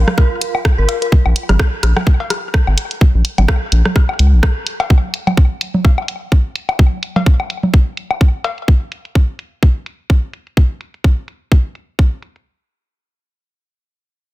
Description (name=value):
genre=minimal techno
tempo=127 BPM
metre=4/4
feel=swing 57% on 16ths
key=Bb minor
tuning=A4 = 440 Hz
part: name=round analog bass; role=bass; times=0.0-4.4 s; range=Ab1 to Db2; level=-12 LUFS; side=equal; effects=sidechain pumping
part: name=airy breathy pad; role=texture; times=0.0-1.1 s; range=F4 to F5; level=-31 LUFS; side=right 3 dB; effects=chorus, sidechain pumping
part: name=garage drum kit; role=drums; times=0.1-12.4 s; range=hi-hat, rim click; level=-22 LUFS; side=right 1 dB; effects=low-pass filter on hats, small room reverb, soft clipping on snare, low-pass filter on snare
part: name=electronic congas, rim click, woodblock and cowbell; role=percussion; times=0.1-8.6 s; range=none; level=-20 LUFS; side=left 1 dB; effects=small room reverb, digital delay
part: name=dark detuned synth bell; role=riff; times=0.2-1.0 s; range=Bb4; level=-22 LUFS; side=left 1 dB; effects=chorus, phaser, sidechain pumping, ping-pong delay
part: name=electronic kick drum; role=drums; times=0.2-12.1 s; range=none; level=-10 LUFS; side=equal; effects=small room reverb
room=little or no reverb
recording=dense, heavily limited modern master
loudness=-13 LUFS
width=side -17 dB against mid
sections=0.0-12.5 A section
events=none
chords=0.0 Bb5